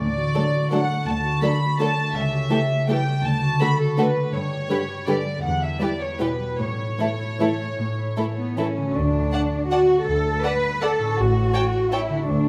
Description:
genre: classical, orchestral ballroom waltz.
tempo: 141-177 BPM.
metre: 3/4.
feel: rubato.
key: D major.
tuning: A4 = 440 Hz.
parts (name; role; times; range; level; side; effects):
rich studio violin section; melody; 0.0-12.0 s; A4 to B5; -29 LUFS; equal; none.
concert harp; arpeggios; 0.0-12.5 s; E2 to B4; -28 LUFS; equal; none.
warm studio cello section; bass; 0.0-12.5 s; C#2 to B4; -26 LUFS; equal; none.
warm studio violin section; second line; 0.4-12.0 s; D4 to G5; -31 LUFS; equal; none.
dark studio viola section; accompaniment; 0.4-12.0 s; D3 to D5; -30 LUFS; equal; none.
rich studio double bass section; bass; 9.0-12.5 s; A1 to D2; -28 LUFS; equal; none.
room: wet recital hall reverb, RT60 1.5 s.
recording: none.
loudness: -22 LUFS.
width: mono.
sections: 0.0-9.0 A section; 9.0-12.5 A section.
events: none.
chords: 0.0 D; 2.2 A7/C#; 3.2 D; 4.3 G; 5.4 Em; 6.6 A; 9.0 D; 11.2 A7.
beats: | 0.00 0.36 0.72 | 1.07 1.43 1.80 | 2.15 2.51 2.89 | 3.25 3.61 3.98 | 4.34 4.70 5.08 | 5.43 5.80 6.20 | 6.58 6.99 7.40 | 7.79 8.18 8.58 | 8.96 9.33 9.71 | 10.07 10.44 10.82 | 11.17 11.54 11.92 | 12.27.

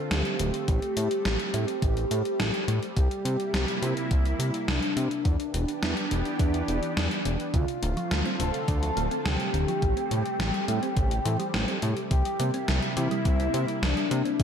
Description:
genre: synthwave.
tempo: 105 BPM.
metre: 4/4.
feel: straight.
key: unclear.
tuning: A4 = 440 Hz.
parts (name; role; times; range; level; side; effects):
expressive synth lead; melody; 0.0-14.4 s; D4 to A4; -30 LUFS; equal; lush chorus, ping-pong delay.
lush unison pad; sustained chords; 0.0-14.4 s; C3 to G4; -34 LUFS; equal; chorus, phaser, sidechain pumping.
fat analog bass; bass; 0.1-14.4 s; D1 to C3; -28 LUFS; equal; none.
gated 80s digital drum machine; drums; 0.1-14.4 s; hi-hat, snare drum; -32 LUFS; equal; gated reverb, gated reverb snare, overdrive.
electronic kick drum; drums; 0.7-14.4 s; none; -25 LUFS; equal; overdrive.
thumb-piano-like synth pluck; arpeggios; 7.5-14.4 s; B2 to C4; -34 LUFS; right 2 dB; chorus, ping-pong delay, slapback echo.
room: moderate lush hall reverb, RT60 1.7 s.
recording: big arena sound.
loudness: -24 LUFS.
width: side -8 dB against mid.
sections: 0.0-14.4 A section.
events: none.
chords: 0.0 Dm7; 0.7 Am7; 3.0 C7; 5.3 Em7; 7.5 Dm7; 9.8 Am7; 12.1 C7.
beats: 0.11 | 0.68 1.25 1.82 2.40 | 2.97 3.54 4.11 4.68 | 5.25 5.83 6.40 6.97 | 7.54 8.11 8.68 9.25 | 9.82 10.40 10.97 11.54 | 12.11 12.68 13.25 13.82 | 14.40.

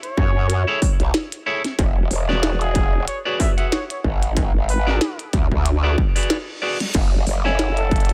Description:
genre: glitch hop.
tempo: 93 BPM.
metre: 4/4.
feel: swing 56% on 16ths.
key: unclear.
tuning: A4 = 440 Hz.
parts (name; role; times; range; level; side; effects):
breathy trumpet; melody; 0.0-8.1 s; G#4 to E5; -31 LUFS; equal; dub echo.
glitchy drum kit; drums; 0.0-8.1 s; crash cymbal, hi-hat, snare drum; -27 LUFS; equal; small room ambience.
growl bass; bass; 0.2-8.1 s; E1 to F#2; -23 LUFS; equal; chorus, overdrive.
electronic kick drum; drums; 0.2-8.1 s; none; -22 LUFS; equal; distortion, small room ambience.
clean electric guitar; stabs; 0.7-8.1 s; E4 to G#5; -28 LUFS; equal; sidechain pumping, dub echo.
reverse cymbal; sound effects; 6.4-6.9 s; none; -35 LUFS; equal; none.
room: little or no reverb.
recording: none.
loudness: -20 LUFS.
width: mono.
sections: 0.0-8.1 A section.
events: reverse cymbal 6.4-6.9; break 6.3-6.9.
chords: 0.0 F#m7; 1.8 E7; 6.9 F#m7.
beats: 0.49 1.14 | 1.78 2.43 3.08 3.72 | 4.37 5.01 5.66 6.30 | 6.95 7.59.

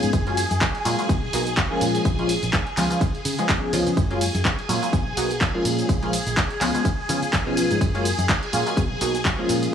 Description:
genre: filtered disco house.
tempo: 125 BPM.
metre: 4/4.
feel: swing 56% on 16ths.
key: F# major.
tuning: A4 = 440 Hz.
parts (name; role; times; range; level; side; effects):
funky polysynth comp; accompaniment; 0.0-9.7 s; E#3 to G#4; -25 LUFS; left 1 dB; chorus, phaser, sidechain pumping.
phased string machine; sustained chords; 0.0-9.7 s; G#4 to G#5; -28 LUFS; left 1 dB; ensemble chorus, phaser, sidechain pumping.
fingered electric bass; bass; 0.0-9.7 s; A#1 to C#3; -27 LUFS; equal; tube saturation, sidechain pumping.
punchy analog drum machine; drums; 0.0-9.7 s; handclaps, hi-hat, ride cymbal, shaker; -26 LUFS; equal; sidechain pumping on hats, sidechain pumping on cymbals, sidechain pumping on perc.
electronic kick drum; drums; 0.1-9.4 s; none; -23 LUFS; equal; none.
room: light reverb, digital ambience.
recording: dry, gritty hardware recording, studio ambience.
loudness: -20 LUFS.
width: side -8 dB against mid.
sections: 0.0-9.7 A section.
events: none.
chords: 0.1 F#maj9; 1.1 Bmaj7; 1.8 A#m7; 2.8 C#7; 4.0 F#maj9; 4.9 Bmaj7; 5.7 A#m7; 6.6 C#7; 7.8 F#maj9; 8.8 Bmaj7.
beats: | 0.13 0.61 1.09 1.57 | 2.05 2.53 3.01 3.49 | 3.97 4.45 4.93 5.41 | 5.89 6.37 6.85 7.33 | 7.81 8.29 8.77 9.25 | 9.73.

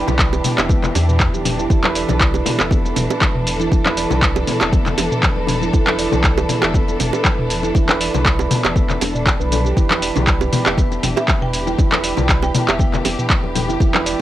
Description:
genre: afro house.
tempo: 119 BPM.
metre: 4/4.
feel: swing 54% on 16ths.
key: E minor.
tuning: A4 = 442 Hz.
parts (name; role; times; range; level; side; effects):
warm studio string section; sustained chords; 0.0-14.2 s; E3 to A4; -25 LUFS; left 1 dB; sidechain pumping, cassette tape.
handpan; arpeggios; 0.0-14.2 s; B3 to E5; -23 LUFS; right 4 dB; sidechain pumping, cassette tape, analog delay.
warm sub bass; bass; 0.0-14.1 s; E1 to E2; -24 LUFS; equal; tube saturation, sidechain pumping.
afro-pop drum kit; drums; 0.1-14.2 s; handclaps, hi-hat, shaker, toms; -19 LUFS; equal; small room reverb, cassette tape.
bongos; percussion; 0.1-14.0 s; none; -24 LUFS; right 8 dB; none.
congas; percussion; 0.1-14.0 s; none; -26 LUFS; left 9 dB; none.
electronic kick drum; drums; 0.2-13.9 s; none; -17 LUFS; equal; overdrive, small room reverb, cassette tape.
marimba with hard mallets; melody; 10.7-13.3 s; B4 to G5; -28 LUFS; right 2 dB; analog delay.
room: light reverb.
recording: home recording on cassette.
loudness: -14 LUFS.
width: side -13 dB against mid.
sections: 0.0-14.2 A section.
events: none.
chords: 0.0 Em7.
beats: 0.19 0.69 1.20 | 1.70 2.21 2.71 3.21 | 3.72 4.22 4.73 5.23 | 5.74 6.24 6.74 7.25 | 7.75 8.26 8.76 9.27 | 9.77 10.27 10.78 11.28 | 11.79 12.29 12.79 13.30 | 13.80.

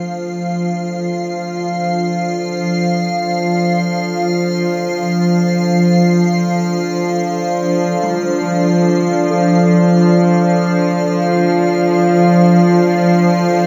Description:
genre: dark ambient drone.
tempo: free time.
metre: none.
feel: none.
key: D minor.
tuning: A4 = 440 Hz.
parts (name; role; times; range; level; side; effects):
dark analog pad; sustained chords; 0.0-13.7 s; D4 to D5; -24 LUFS; equal; chorus, phaser.
gamelan-type bronze metallophone; arpeggios; 0.0-13.7 s; G3 to A4; -32 LUFS; equal; none.
bowed-like drone; drone; 0.0-13.7 s; F3; -16 LUFS; equal; built-in reverb.
icy glass pad; texture; 0.0-13.7 s; F5; -25 LUFS; equal; chorus, built-in reverb.
room: wet echo chamber reverb, RT60 2.3 s.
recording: echo-heavy mix.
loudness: -15 LUFS.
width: mono.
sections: 0.0-13.7 A section.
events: fade-in on analog synth pad 0.0-13.7.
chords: 0.0 Dm.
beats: free time.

